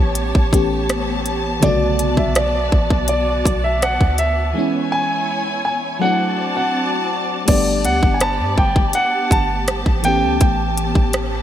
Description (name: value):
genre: contemporary R&B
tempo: 82 BPM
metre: 4/4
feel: straight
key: unclear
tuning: A4 = 440 Hz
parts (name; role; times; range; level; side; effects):
- dark grand piano; melody; 0.0-11.4 s; C#5 to A5; -20 LUFS; right 1 dB; digital delay
- FM electric piano with soft pad layer; accompaniment; 0.0-11.4 s; C#3 to G4; -23 LUFS; left 1 dB; chorus, phaser
- dark studio string section; sustained chords; 0.0-11.4 s; B3 to A5; -24 LUFS; equal; sidechain pumping
- warm 808-style bass; bass; 0.0-11.4 s; G1 to G2; -22 LUFS; equal; none
- trap drum kit; drums; 0.2-11.3 s; crash cymbal, hi-hat, kick drum, rim click; -18 LUFS; equal; none
- small celesta; texture; 8.2-10.5 s; B5 to D6; -36 LUFS; left 1 dB; none
room: moderate lush hall reverb, RT60 2.8 s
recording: bright 1980s-style digital production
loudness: -15 LUFS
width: side -11 dB against mid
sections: 0.0-7.5 A section; 7.5-11.4 B section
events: break 4.6-7.5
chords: 0.0 A9; 1.6 Bm7; 4.6 C#m7; 6.0 D7; 7.5 Gadd9; 10.0 A9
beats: 0.17 0.90 | 1.63 2.36 3.09 3.82 | 4.55 5.29 6.02 6.75 | 7.48 8.21 8.95 9.68 | 10.41 11.14